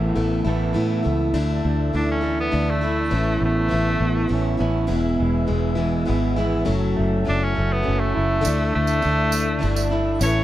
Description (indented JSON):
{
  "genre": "folk rock and heartland rock",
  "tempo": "101 BPM",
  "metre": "3/4",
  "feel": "straight",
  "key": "unclear",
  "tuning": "A4 = 441 Hz",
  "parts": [
    { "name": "picked plugged-in steel-string acoustic guitar", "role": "accompaniment", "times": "0.0-10.4 s", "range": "E2 to E4", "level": "-26 LUFS", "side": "left 4 dB", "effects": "none" },
    { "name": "mellow tonewheel organ", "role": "sustained chords", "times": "0.0-10.4 s", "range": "B4 to E6", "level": "-35 LUFS", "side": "left 1 dB", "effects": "chorus vibrato, stopped rotary speaker" },
    { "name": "electric guitar through a small old amp", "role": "riff", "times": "0.0-10.4 s", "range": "E2 to A4", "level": "-25 LUFS", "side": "right 4 dB", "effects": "none" },
    { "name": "fingered electric bass", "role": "bass", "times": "0.0-10.4 s", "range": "E1 to A2", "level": "-23 LUFS", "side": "equal", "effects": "none" },
    { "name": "bright tenor saxophone", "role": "melody", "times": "2.0-4.6, 7.3-10.4 s", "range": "A3 to C#5", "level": "-24 LUFS", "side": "equal", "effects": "none" },
    { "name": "bright grand piano", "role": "accompaniment", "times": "8.4-10.4 s", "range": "C#4 to D5", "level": "-36 LUFS", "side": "left 4 dB", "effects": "none" },
    { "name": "tambourine", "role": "percussion", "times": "8.4-10.4 s", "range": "none", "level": "-32 LUFS", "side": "right 8 dB", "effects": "none" }
  ],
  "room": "light reverb",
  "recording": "none",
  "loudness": "-19 LUFS",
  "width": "side -14 dB against mid",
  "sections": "0.0-1.4 A section; 1.4-10.4 B section",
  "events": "tenor saxophone solo 1.4-10.4",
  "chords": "0.0 Asus2; 1.4 Dsus2; 3.1 Aadd9; 4.9 E; 6.7 F#m7; 8.5 Dsus2"
}